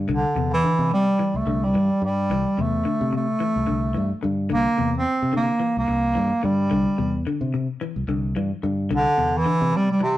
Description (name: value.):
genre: afrobeat.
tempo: 109 BPM.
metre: 4/4.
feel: swing 56% on 16ths.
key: C mixolydian.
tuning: A4 = 441 Hz.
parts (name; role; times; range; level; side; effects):
semi-hollow electric guitar; arpeggios; 0.0-10.2 s; C3 to E3; -29 LUFS; left 5 dB; none.
fingered electric bass; bass; 0.0-9.9 s; C2 to C3; -26 LUFS; equal; none.
clear bass clarinet; melody; 0.1-10.2 s; C3 to C4; -20 LUFS; right 1 dB; none.
room: moderate stone room reverb, RT60 1.2 s.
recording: rough rehearsal-room recording, warm saturation.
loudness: -20 LUFS.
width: side -14 dB against mid.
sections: 0.0-10.2 A section.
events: none.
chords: 0.0 Cadd9.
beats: | 0.09 0.64 1.20 1.75 | 2.30 2.85 3.40 3.96 | 4.51 5.06 5.61 6.16 | 6.71 7.26 7.81 8.36 | 8.91 9.46 10.01.